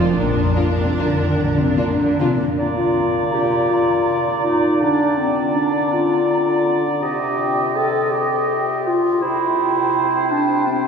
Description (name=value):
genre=classical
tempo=142-177 BPM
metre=3/4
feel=rubato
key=Bb major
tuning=A4 = 437 Hz
part: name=rich chamber violin section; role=melody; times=0.0-2.1 s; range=Bb4 to C5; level=-30 LUFS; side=equal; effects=none
part: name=rich chamber viola section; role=accompaniment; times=0.0-2.3 s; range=D4 to F4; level=-26 LUFS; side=left 1 dB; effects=none
part: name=rich chamber cello section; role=bass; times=0.0-2.6 s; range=F2 to Eb3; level=-23 LUFS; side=equal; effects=none
part: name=rich chamber double bass section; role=bass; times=0.0-1.7 s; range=Bb1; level=-25 LUFS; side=equal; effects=none
part: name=rich chamber violin section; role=second line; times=0.6-2.3 s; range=D4 to F4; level=-28 LUFS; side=left 3 dB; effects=none
part: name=clear oboe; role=second line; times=2.6-10.9 s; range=C5 to Eb5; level=-25 LUFS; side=right 3 dB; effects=none
part: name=mellow hollow large flute ensemble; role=second line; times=2.6-10.9 s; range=G5 to Bb5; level=-25 LUFS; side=equal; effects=none
part: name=mellow bassoon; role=accompaniment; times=2.6-10.9 s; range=Bb2 to D3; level=-23 LUFS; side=equal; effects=none
part: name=warm clarinet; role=second line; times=2.8-10.9 s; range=C4 to A4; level=-19 LUFS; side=left 1 dB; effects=none
room=wet cathedral reverb, RT60 6.7 s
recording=heard from further back in the room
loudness=-16 LUFS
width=side -6 dB against mid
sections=0.0-2.6 A section; 2.6-10.9 A section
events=none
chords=0.2 Bb; 4.8 Bb/D; 7.0 Cm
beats=| 0.17 0.57 0.99 | 1.38 1.78 2.19 | 2.57 2.95 3.33 | 3.69 4.06 4.45 | 4.81 5.17 5.56 | 5.92 6.28 6.67 | 7.02 7.39 7.76 | 8.12 8.49 8.87 | 9.22 9.59 9.96 | 10.31 10.67